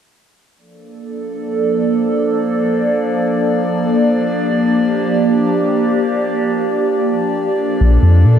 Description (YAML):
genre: IDM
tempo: free time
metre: none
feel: none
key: Bb major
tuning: A4 = 440 Hz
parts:
  - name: warbly tape-like pad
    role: sustained chords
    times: 1.0-8.4 s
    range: F3 to D5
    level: -14 LUFS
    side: equal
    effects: chorus, built-in reverb, phaser, vintage 12-bit sampler grit
  - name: dark detuned saw bass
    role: bass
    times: 7.8-8.4 s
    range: Bb1 to Bb2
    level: -8 LUFS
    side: equal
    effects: none
room: wet huge ambient reverb, RT60 8.2 s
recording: none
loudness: -13 LUFS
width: side -8 dB against mid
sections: 0.6-7.5 A section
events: none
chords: 0.6 Bbmaj7; 4.0 Gm7; 7.5 Bbmaj7